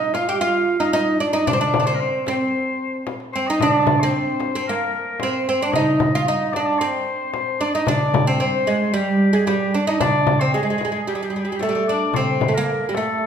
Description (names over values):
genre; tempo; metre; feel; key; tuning
Arabic maqam ensemble; 112 BPM; 4/4; straight; unclear; A4 = 441 Hz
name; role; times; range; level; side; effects
oud; melody; 0.0-13.3 s; G3 to G4; -20 LUFS; right 2 dB; none
warm oboe; second line; 0.0-13.3 s; G4 to F5; -25 LUFS; left 5 dB; none
darbuka; percussion; 0.1-12.9 s; none; -26 LUFS; equal; none
frame drum; percussion; 0.1-13.1 s; none; -25 LUFS; left 5 dB; none
room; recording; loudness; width
wet recital hall reverb, RT60 1.4 s; minimal, uncompressed stereo recording; -18 LUFS; side -8 dB against mid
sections
0.0-12.1 A section; 12.1-13.3 B section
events
drum fill 3.1-3.6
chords
none